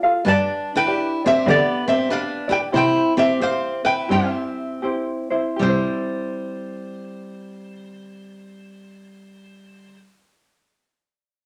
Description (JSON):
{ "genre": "Hawaiian", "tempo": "75-100 BPM", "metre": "4/4", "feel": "swing 63% on 8ths", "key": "C major", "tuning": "A4 = 440 Hz", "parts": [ { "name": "ukulele", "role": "accompaniment", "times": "0.0-10.1 s", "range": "C4 to F5", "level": "-27 LUFS", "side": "equal", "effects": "none" }, { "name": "picked steel-string acoustic guitar", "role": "second line", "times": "0.2-10.0 s", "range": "G3 to E4", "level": "-27 LUFS", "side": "equal", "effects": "none" }, { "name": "metal-body resonator slide guitar", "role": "melody", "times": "0.3-10.0 s", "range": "G4 to A5", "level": "-23 LUFS", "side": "equal", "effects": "none" }, { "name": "dark cello", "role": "bass", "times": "0.3-5.7 s", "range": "G2 to D3", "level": "-25 LUFS", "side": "equal", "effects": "none" } ], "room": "wet studio reverb, RT60 0.8 s", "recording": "none", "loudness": "-20 LUFS", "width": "mono", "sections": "0.0-5.6 A section; 5.6-8.8 B section", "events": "slowing down 0.3-5.6", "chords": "0.3 G; 2.7 C" }